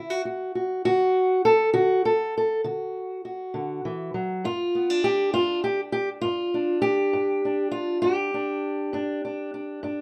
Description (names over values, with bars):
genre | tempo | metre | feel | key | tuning
acoustic country blues, solo or duo | 67 BPM (dotted quarters) | 12/8 | straight | unclear | A4 = 442 Hz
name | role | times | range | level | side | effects
fingerpicked steel-string acoustic guitar | solo | 0.0-10.0 s | G2 to A4 | -25 LUFS | equal | none
room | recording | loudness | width
moderate small room reverb, RT60 0.5 s | rough home demo mix | -25 LUFS | mono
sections
0.0-10.0 A section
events
none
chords
0.0 D; 4.4 G5